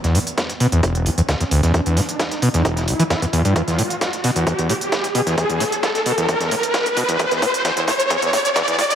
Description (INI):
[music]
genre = driving peak-time techno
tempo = 132 BPM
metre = 4/4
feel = straight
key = E minor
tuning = A4 = 440 Hz
[part]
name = screaming distorted acid line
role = riff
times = 0.0-8.8 s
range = E1 to E3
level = -20 LUFS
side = equal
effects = distortion, analog chorus, sidechain pumping, tape echo
[part]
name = dusty soul sampler-style drum kit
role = drums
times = 0.0-8.9 s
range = hi-hat, snare drum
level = -28 LUFS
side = equal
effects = overdrive, sidechain pumping on hats, high-pass filter on hats, high-pass filter on snare
[part]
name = electronic hi-hat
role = drums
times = 0.0-8.9 s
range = none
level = -28 LUFS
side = right 1 dB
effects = sidechain pumping on hats
[part]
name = riser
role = sound effects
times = 0.0-8.9 s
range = none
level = -21 LUFS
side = equal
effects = none
[part]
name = electronic kick drum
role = drums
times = 0.4-8.9 s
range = none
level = -23 LUFS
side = equal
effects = high-pass filter on kick, high-pass filter on room
[sound]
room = moderate lush hall reverb, RT60 2.0 s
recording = dry, gritty hardware recording, high-pass filter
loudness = -16 LUFS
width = side -9 dB against mid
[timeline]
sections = 0.0-8.9 A section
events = build-up 0.0-8.9; riser 0.0-8.9; filter sweep on acid bass 0.0-8.9; filter sweep 0.0-8.9; drum fill 3.6-8.9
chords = none